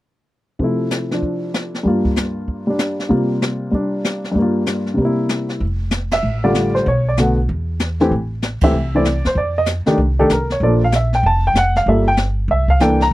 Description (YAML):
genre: jazz piano trio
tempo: 192 BPM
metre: 4/4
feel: swing 63% on 8ths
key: F major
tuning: A4 = 440 Hz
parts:
  - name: warm baby grand piano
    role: melody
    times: 0.6-13.1 s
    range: G2 to Bb5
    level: -17 LUFS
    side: equal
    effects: none
  - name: jazz brush drum kit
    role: drums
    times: 0.6-13.1 s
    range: brushed snare drum, hi-hat, kick drum, ride cymbal, snare drum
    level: -21 LUFS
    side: equal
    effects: none
  - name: upright bass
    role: bass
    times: 5.6-13.1 s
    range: F1 to F2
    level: -19 LUFS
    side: equal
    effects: none
room: little or no reverb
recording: dry, close 1970s-style studio recording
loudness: -15 LUFS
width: side -16 dB against mid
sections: 0.6-5.6 A section; 5.6-13.1 B section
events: band accent 6.1, 8.6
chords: 0.6 Fmaj7/C; 1.9 Gm7; 3.1 C7sus4; 4.4 Gm7; 5.0 C7; 5.6 F69; 6.9 Bm7; 7.5 N.C.; 8.1 Am; 9.4 F13; 10.6 Bbmaj7; 11.9 Gm9; 12.5 C13